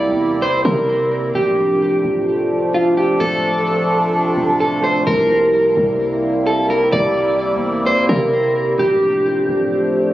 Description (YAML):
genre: hip hop, atmospheric cloud-rap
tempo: 129 BPM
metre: 4/4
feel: half-time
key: D minor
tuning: A4 = 437 Hz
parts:
  - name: electric guitar at the edge of break-up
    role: melody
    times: 0.0-10.1 s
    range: F4 to D5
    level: -16 LUFS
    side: equal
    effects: digital delay
  - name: sweeping resonant pad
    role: sustained chords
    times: 0.0-10.1 s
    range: C3 to E4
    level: -19 LUFS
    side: right 1 dB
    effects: chorus, phaser
  - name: warm 808-style bass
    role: bass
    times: 0.0-10.1 s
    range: D1 to C3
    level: -26 LUFS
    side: equal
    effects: none
room: light reverb, digital ambience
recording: recorded on a phone in the room, club reverb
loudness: -14 LUFS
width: side -14 dB against mid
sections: 0.0-1.3 A section; 1.3-10.1 B section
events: none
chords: 0.0 C7; 1.3 Dm7; 5.1 C7; 8.8 Dm7